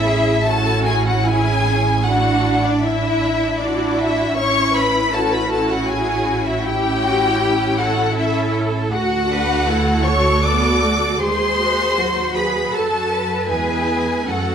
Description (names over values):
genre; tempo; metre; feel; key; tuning
classical, slow romantic movement for string orchestra; 78 BPM; 3/4; rubato; A major; A4 = 438 Hz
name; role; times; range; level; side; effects
rich studio violin section; melody; 0.0-14.5 s; D5 to D6; -20 LUFS; left 3 dB; none
warm studio violin section; second line; 0.0-14.5 s; D4 to D5; -23 LUFS; left 3 dB; none
rich studio viola section; accompaniment; 0.0-14.5 s; F#3 to G#4; -22 LUFS; right 1 dB; none
rich studio double bass section; bass; 0.0-14.5 s; A1 to F#2; -23 LUFS; right 3 dB; none
warm studio cello section; bass; 0.0-14.5 s; C#4 to B4; -25 LUFS; right 3 dB; none
room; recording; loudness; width
wet recital hall reverb, RT60 1.4 s; none; -16 LUFS; side -8 dB against mid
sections
0.0-14.5 A section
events
none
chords
0.0 A; 2.1 Dadd9/A; 4.4 A; 6.6 A7; 8.9 D; 11.2 D#dim7; 13.5 E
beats
0.46 1.26 | 2.06 2.83 3.60 | 4.38 5.13 5.89 | 6.64 7.41 8.17 | 8.92 9.68 10.44 | 11.20 11.96 12.73 | 13.50 14.28